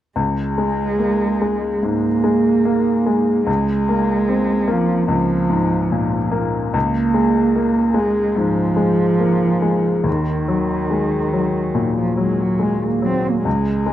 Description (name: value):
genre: neoclassical piano and strings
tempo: 73 BPM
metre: 4/4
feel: rubato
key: Eb dorian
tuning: A4 = 438 Hz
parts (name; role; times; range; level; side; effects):
- muted cello; second line; 0.2-13.9 s; Eb3 to C4; -19 LUFS; right 3 dB; none
- clear baby grand piano; accompaniment; 0.2-13.9 s; Db2 to C4; -19 LUFS; left 3 dB; none
room: light reverb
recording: dry, close 1970s-style studio recording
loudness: -16 LUFS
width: side -12 dB against mid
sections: 0.2-13.9 A section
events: none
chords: 0.2 Db5; 3.5 Bbm7/Db; 6.7 Db6; 10.1 Ebm